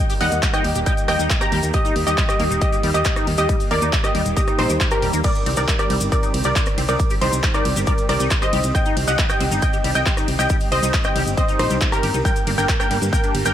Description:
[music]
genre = uplifting trance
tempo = 137 BPM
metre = 4/4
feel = straight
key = unclear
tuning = A4 = 440 Hz
[part]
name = wide unison pluck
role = melody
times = 0.0-13.5 s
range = Eb4 to Bb5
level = -23 LUFS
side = equal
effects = sidechain pumping, digital delay
[part]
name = dark baby grand piano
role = second line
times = 0.0-13.5 s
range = Bb5 to Bb6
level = -27 LUFS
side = equal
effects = sidechain pumping, digital delay
[part]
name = filtered supersaw swell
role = sustained chords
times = 0.1-13.5 s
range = D3 to G4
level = -28 LUFS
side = right 2 dB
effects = sidechain pumping
[part]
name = liquid acid bass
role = arpeggios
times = 0.1-13.5 s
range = G3 to G4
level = -29 LUFS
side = left 2 dB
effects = analog chorus, sidechain pumping, digital delay
[part]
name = big-room dance drum kit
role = drums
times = 0.1-13.5 s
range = crash cymbal, handclaps, hi-hat, ride cymbal, rim click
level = -26 LUFS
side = equal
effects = none
[part]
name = cabasa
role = percussion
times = 0.1-13.5 s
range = none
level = -32 LUFS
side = left 4 dB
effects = none
[part]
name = solid FM bass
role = bass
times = 0.2-13.5 s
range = Eb1 to G2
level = -23 LUFS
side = equal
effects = sidechain pumping
[part]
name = electronic kick drum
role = drums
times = 0.4-13.2 s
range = none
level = -21 LUFS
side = equal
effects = none
[sound]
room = light reverb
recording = none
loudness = -16 LUFS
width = side -10 dB against mid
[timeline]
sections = 0.0-13.5 A section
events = none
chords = 0.0 Eb; 5.2 Cm; 12.3 Gm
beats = 0.43 0.86 1.30 | 1.74 2.18 2.62 3.05 | 3.49 3.93 4.37 4.81 | 5.24 5.68 6.12 6.56 | 7.00 7.43 7.87 8.31 | 8.75 9.19 9.62 10.06 | 10.50 10.94 11.38 11.81 | 12.25 12.69 13.13

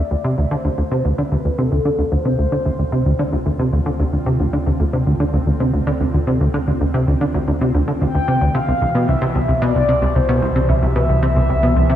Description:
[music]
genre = ambient, sequencer-driven space music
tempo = 112 BPM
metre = 4/4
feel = straight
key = D dorian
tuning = A4 = 440 Hz
[part]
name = mellow horn-like synth lead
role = melody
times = 0.0-3.7, 8.0-12.0 s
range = A4 to G5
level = -22 LUFS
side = left 1 dB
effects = wide subtle chorus, analog delay
[part]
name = lush unison pad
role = sustained chords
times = 0.0-12.0 s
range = B2 to F4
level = -26 LUFS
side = equal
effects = chorus, phaser
[part]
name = plucky analog bass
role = riff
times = 0.0-11.9 s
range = C2 to D3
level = -17 LUFS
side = equal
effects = lush chorus, analog delay
[part]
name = warm sub bass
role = bass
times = 0.0-12.0 s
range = C2 to D2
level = -25 LUFS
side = equal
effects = none
[sound]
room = wet concert hall reverb, RT60 2.0 s, digital ambience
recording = dark, warm production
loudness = -15 LUFS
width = side -11 dB against mid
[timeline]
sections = 0.0-12.0 A section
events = fade-in on analog synth pad 0.0-12.0; fade-in on sub bass 0.0-12.0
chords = 0.0 Dm7; 8.5 Cmaj7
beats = 0.51 1.05 1.58 | 2.12 2.65 3.19 3.73 | 4.26 4.80 5.33 5.87 | 6.40 6.94 7.48 8.01 | 8.55 9.08 9.62 10.15 | 10.69 11.23 11.76

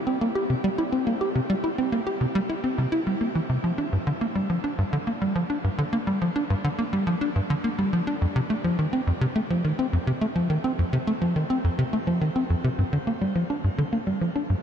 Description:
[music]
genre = ambient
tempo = 105 BPM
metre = 4/4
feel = straight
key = G minor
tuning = A4 = 440 Hz
[part]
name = tight sequencer bass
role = solo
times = 0.1-14.5 s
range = F2 to G4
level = -23 LUFS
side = equal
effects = analog chorus, tape echo
[sound]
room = wet shimmer reverb, RT60 7.5 s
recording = dark, warm production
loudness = -23 LUFS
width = side -8 dB against mid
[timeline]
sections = 0.0-12.8 A section; 12.8-14.6 B section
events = none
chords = none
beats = 0.21 0.79 | 1.36 1.93 2.50 3.07 | 3.64 4.21 4.79 5.36 | 5.93 6.50 7.07 7.64 | 8.21 8.79 9.36 9.93 | 10.50 11.07 11.64 12.21 | 12.79 13.36 13.93 14.50

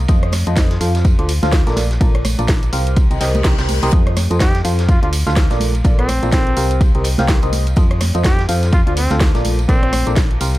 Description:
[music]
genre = piano house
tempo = 125 BPM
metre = 4/4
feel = swing 58% on 16ths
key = F mixolydian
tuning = A4 = 438 Hz
[part]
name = solid FM bass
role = bass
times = 0.0-10.6 s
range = Bb1 to F2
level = -18 LUFS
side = equal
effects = sidechain pumping
[part]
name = barking FM electric piano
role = riff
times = 0.1-10.6 s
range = F4 to G5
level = -22 LUFS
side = equal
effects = phaser, sidechain pumping, dub echo
[part]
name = electronic kick drum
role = drums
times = 0.1-10.3 s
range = none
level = -14 LUFS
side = equal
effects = overdrive
[part]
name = house drum kit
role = drums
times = 0.1-10.6 s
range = hi-hat, rim click, snare drum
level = -24 LUFS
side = equal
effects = none
[part]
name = loose indie drum kit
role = drums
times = 0.1-10.5 s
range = ride cymbal, snare drum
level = -32 LUFS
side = equal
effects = high-pass filter on cymbals, high-pass filter on snare, high-pass filter on room
[part]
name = tambourine and congas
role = percussion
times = 0.1-10.6 s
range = none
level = -27 LUFS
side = right 3 dB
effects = none
[part]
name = reverse cymbal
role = sound effects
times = 3.1-3.9 s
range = none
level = -29 LUFS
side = left 4 dB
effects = none
[part]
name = mellow trumpet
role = melody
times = 4.4-10.2 s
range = C4 to G4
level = -24 LUFS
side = equal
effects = dub echo
[sound]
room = studio reverb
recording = dark, warm production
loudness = -13 LUFS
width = side -16 dB against mid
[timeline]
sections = 0.0-10.6 A section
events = reverse cymbal 3.1-3.9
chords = 0.1 F7; 1.0 Dm7; 1.8 Bbmaj7; 3.0 Cm7; 3.9 F7; 4.9 Dm7; 5.6 Bbmaj7; 6.8 Cm7; 7.8 F7; 8.7 Dm7; 9.4 Bbmaj7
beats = | 0.09 0.57 1.05 1.53 | 2.01 2.49 2.97 3.45 | 3.93 4.41 4.89 5.37 | 5.85 6.33 6.81 7.29 | 7.77 8.25 8.73 9.21 | 9.69 10.17

